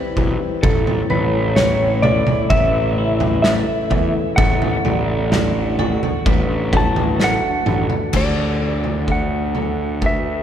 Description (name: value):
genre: post-rock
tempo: 64 BPM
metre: 4/4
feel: straight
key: unclear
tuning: A4 = 440 Hz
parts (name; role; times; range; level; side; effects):
- granular cloud pad; sustained chords; 0.0-10.4 s; C#3 to A5; -30 LUFS; equal; none
- clean electric guitar; arpeggios; 0.0-10.4 s; A2 to F#4; -26 LUFS; left 3 dB; none
- vibraphone with hard mallets; arpeggios; 0.0-10.4 s; A4 to D5; -26 LUFS; right 3 dB; none
- fuzz picked electric bass; bass; 0.2-10.4 s; A1 to E2; -22 LUFS; equal; overdrive
- loose indie drum kit; drums; 0.2-10.2 s; crash cymbal, kick drum, snare drum, toms; -20 LUFS; equal; none
- clean lap steel guitar; melody; 0.6-10.4 s; A4 to A5; -22 LUFS; equal; none
room: wet cathedral reverb, RT60 5.3 s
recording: recorded in a church or concert hall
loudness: -15 LUFS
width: side -9 dB against mid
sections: 0.0-8.1 A section; 8.1-10.4 B section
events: drum fill 7.2-8.1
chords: 0.0 C; 0.6 A; 4.4 D/A; 8.1 D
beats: | 0.64 1.58 2.52 3.45 | 4.39 5.33 6.26 7.20 | 8.14 9.09 10.03